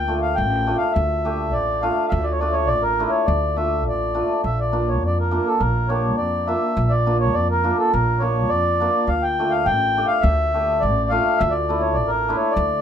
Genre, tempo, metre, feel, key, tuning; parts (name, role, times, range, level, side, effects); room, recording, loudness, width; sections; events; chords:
klezmer; 103 BPM; 2/4; straight; D harmonic minor; A4 = 442 Hz
mellow accordion; melody; 0.0-12.8 s; A4 to G5; -21 LUFS; equal
upright bass; bass; 0.0-12.8 s; A1 to F2; -23 LUFS; equal
cimbalom; accompaniment; 0.1-12.4 s; A3 to G4; -24 LUFS; equal
moderate studio ambience, RT60 0.5 s; minimal, uncompressed stereo recording; -18 LUFS; side -8 dB against mid
0.0-4.4 A section; 4.4-12.8 A section
0.0 Dm; 4.4 Bb; 9.1 Dm